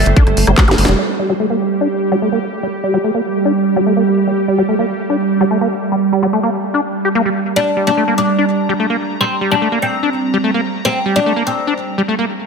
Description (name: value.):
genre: psychedelic trance.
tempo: 146 BPM.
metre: 4/4.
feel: straight.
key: G minor.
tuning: A4 = 438 Hz.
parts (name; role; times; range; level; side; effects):
oud; melody; 0.0-0.9, 7.6-12.4 s; A3 to D4; -18 LUFS; left 1 dB; phaser, sidechain pumping, digital delay.
evolving wavetable pad; sustained chords; 0.0-12.5 s; G3 to Bb5; -18 LUFS; right 4 dB; chorus, built-in reverb, sidechain pumping.
tight sequencer bass; bass; 0.0-1.0 s; F1 to G1; -14 LUFS; equal; tube saturation.
garage drum kit; drums; 0.1-1.0 s; handclaps, hi-hat, rim click, snare drum; -20 LUFS; equal; low-pass filter on hats, low-pass filter on snare.
liquid acid bass; riff; 0.2-12.3 s; G3 to G4; -18 LUFS; left 1 dB; chorus, auto-pan, sidechain pumping, digital delay.
electronic kick drum; drums; 0.2-0.7 s; none; -11 LUFS; equal; none.
zap; sound effects; 0.7-0.8 s; none; -24 LUFS; equal; none.
room: wet lush hall reverb, RT60 2.3 s.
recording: none.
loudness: -13 LUFS.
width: side -5 dB against mid.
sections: 1.0-12.5 A section.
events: drum fill 0.6-1.0; band accent 0.8; filter sweep on acid bass 1.0-12.5.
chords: 0.0 G5.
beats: 0.17 0.58 | 0.99 1.40 1.81 2.22 | 2.63 3.04 3.45 3.86 | 4.28 4.69 5.10 5.51 | 5.92 6.33 6.74 7.15 | 7.56 7.97 8.38 8.79 | 9.21 9.62 10.03 10.44 | 10.85 11.26 11.67 12.08.